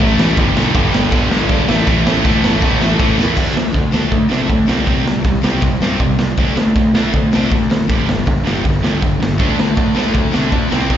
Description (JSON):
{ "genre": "punk rock", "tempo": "159 BPM", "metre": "4/4", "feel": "straight", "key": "unclear", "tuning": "A4 = 440 Hz", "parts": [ { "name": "distorted electric guitar", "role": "riff", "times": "0.0-11.0 s", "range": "G2 to D4", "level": "-20 LUFS", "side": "right 10 dB", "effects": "overdrive, slapback echo" }, { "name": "distorted electric guitar", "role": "riff", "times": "0.0-3.4, 9.4-11.0 s", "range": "G2 to D4", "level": "-21 LUFS", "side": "equal", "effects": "overdrive" }, { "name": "sludgy distorted guitar", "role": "riff", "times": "0.0-11.0 s", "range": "G2 to D4", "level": "-19 LUFS", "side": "left 8 dB", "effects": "overdrive" }, { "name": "fuzz picked electric bass", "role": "bass", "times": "0.0-11.0 s", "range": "G1 to C3", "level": "-20 LUFS", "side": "equal", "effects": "overdrive" }, { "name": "raw garage drum kit", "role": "drums", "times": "0.0-11.0 s", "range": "crash cymbal, hi-hat, kick drum, snare drum", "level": "-16 LUFS", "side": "equal", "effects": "none" } ], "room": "studio reverb", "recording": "live gig heard through the venue's PA, recital hall reverb, nothing above 7.5 kHz", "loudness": "-12 LUFS", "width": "side -10 dB against mid", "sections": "0.0-3.4 A section; 3.4-11.0 B section", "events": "drum fill 3.2", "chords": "0.4 G; 1.7 A5; 3.4 D5; 4.7 C5; 6.4 D5; 7.9 G5; 9.4 D5" }